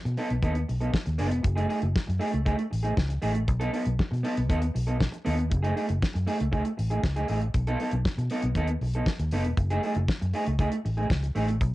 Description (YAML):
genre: disco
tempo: 118 BPM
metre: 4/4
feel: straight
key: F# dorian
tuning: A4 = 440 Hz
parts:
  - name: electric guitar at the edge of break-up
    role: accompaniment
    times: 0.1-11.7 s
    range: A3 to A4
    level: -29 LUFS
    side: right 1 dB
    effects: cassette tape
  - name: vintage muted fingered electric bass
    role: bass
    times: 0.1-11.7 s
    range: E1 to B2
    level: -27 LUFS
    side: equal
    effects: none
  - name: damped 70s drum kit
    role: drums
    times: 0.1-11.7 s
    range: hi-hat, kick drum, snare drum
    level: -29 LUFS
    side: equal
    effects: none
room: light reverb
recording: home recording on cassette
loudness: -24 LUFS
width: side -17 dB against mid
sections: 0.0-11.7 A section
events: none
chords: 0.0 B7; 1.4 F#m69; 3.5 B7; 5.5 F#m69; 7.5 B7; 9.6 F#m69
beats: 0.43 0.94 | 1.45 1.96 2.46 2.97 | 3.48 3.99 4.50 5.01 | 5.51 6.02 6.53 7.04 | 7.54 8.05 8.56 9.07 | 9.57 10.08 10.59 11.10 | 11.60